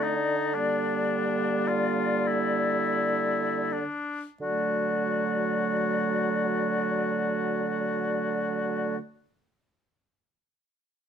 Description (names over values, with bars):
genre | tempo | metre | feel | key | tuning
classical, slow romantic movement for wind quintet | 25-40 BPM (dotted quarters) | 6/8 | rubato | unclear | A4 = 440 Hz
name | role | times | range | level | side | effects
silver concert flute | melody | 0.0-9.0 s | D5 | -32 LUFS | left 10 dB | none
warm oboe | second line | 0.0-9.0 s | D4 to F#4 | -30 LUFS | left 4 dB | none
bright clarinet | accompaniment | 0.0-9.0 s | A3 to C4 | -33 LUFS | right 8 dB | none
warm French horn | accompaniment | 0.0-9.0 s | F#3 to A3 | -34 LUFS | left 1 dB | none
mellow bassoon | bass | 0.0-9.0 s | D3 | -30 LUFS | right 4 dB | none
room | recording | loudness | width
moderate studio reverb, RT60 0.7 s | none | -25 LUFS | side -8 dB against mid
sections
0.0-4.4 A section; 4.4-8.2 B section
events
slowing down 0.0-4.4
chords
0.0 D7(no3); 0.5 Gm/D; 4.4 D